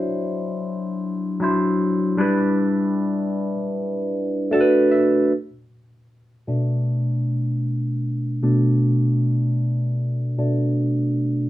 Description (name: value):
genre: soul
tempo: 77 BPM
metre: 4/4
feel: straight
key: unclear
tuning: A4 = 440 Hz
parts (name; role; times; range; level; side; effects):
- barky tine electric piano; solo; 0.0-11.5 s; B2 to A5; -19 LUFS; equal; overdrive, phaser
room: moderate studio ambience, RT60 0.5 s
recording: band playing live in one room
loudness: -19 LUFS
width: side -14 dB against mid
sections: 0.0-5.3 A section; 5.3-11.5 B section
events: tine electric piano fill 4.1-5.3; tine electric piano solo 5.3-11.5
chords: 0.0 D9; 2.2 Em7; 4.5 Bm7